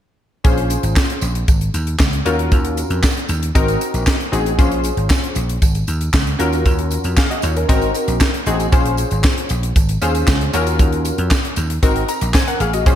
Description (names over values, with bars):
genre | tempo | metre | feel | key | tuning
early-eighties boogie funk | 116 BPM | 4/4 | straight | Bb minor | A4 = 444 Hz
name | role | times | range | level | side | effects
funky polysynth comp | accompaniment | 0.4-13.0 s | C4 to Bb5 | -20 LUFS | left 2 dB | chorus, slapback echo
vintage slap bass | bass | 0.4-13.0 s | Ab1 to F2 | -19 LUFS | equal | none
tight funk drum kit | drums | 0.4-13.0 s | handclaps, hi-hat, kick drum, snare drum | -17 LUFS | equal | none
tambourine | percussion | 0.4-13.0 s | none | -32 LUFS | right 10 dB | none
room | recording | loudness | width
light reverb, small room ambience | none | -15 LUFS | side -10 dB against mid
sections
0.4-8.7 A section; 8.7-13.0 B section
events
none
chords
0.4 Bbm9; 2.3 Ebm7; 3.6 Ab7; 4.6 Bbm9; 6.4 Ebm7; 7.7 Ab7; 8.7 Bbm9; 10.5 Ebm7; 11.8 Ab7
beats
| 0.45 0.97 1.48 2.00 | 2.52 3.04 3.55 4.07 | 4.59 5.10 5.62 6.14 | 6.66 7.17 7.69 8.21 | 8.72 9.24 9.76 10.28 | 10.79 11.31 11.83 12.35 | 12.86